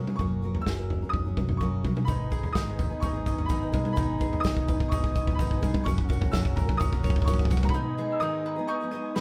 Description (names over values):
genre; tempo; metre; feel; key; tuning
indie folk with a building arrangement; 127 BPM; 4/4; straight; G# minor; A4 = 441 Hz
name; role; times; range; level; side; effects
bright upright piano; melody; 0.0-9.2 s; A#5 to E6; -38 LUFS; equal; none
fingerpicked steel-string acoustic guitar; accompaniment; 0.0-2.1 s; C#3 to A#4; -41 LUFS; equal; none
picked steel-string acoustic guitar; accompaniment; 0.0-9.2 s; F#2 to A#4; -38 LUFS; equal; none
natural country drum kit; drums; 0.1-9.2 s; kick drum, snare drum, toms; -29 LUFS; equal; none
picked electric bass; bass; 0.2-7.5 s; F#1 to G#1; -36 LUFS; equal; none
mellow French horn; second line; 2.1-9.2 s; C#4 to D#4; -37 LUFS; equal; none
mellow tonewheel organ; sustained chords; 2.1-9.2 s; C#4 to G#5; -43 LUFS; equal; none
mandolin; arpeggios; 2.1-9.2 s; C#4 to D#5; -40 LUFS; equal; none
tube shaker; percussion; 2.1-7.7 s; none; -55 LUFS; equal; none
room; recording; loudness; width
light reverb; band playing live in one room; -27 LUFS; mono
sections
0.0-9.2 A section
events
build-up 0.0-9.2; drum fill 0.0-7.8; break 7.8-9.2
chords
0.0 F#; 2.1 G#m; 5.9 F#; 7.8 G#m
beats
| 0.20 0.67 1.14 1.61 | 2.08 2.56 3.03 3.50 | 3.98 4.45 4.92 5.39 | 5.87 6.34 6.81 7.28 | 7.76 8.23 8.70 9.17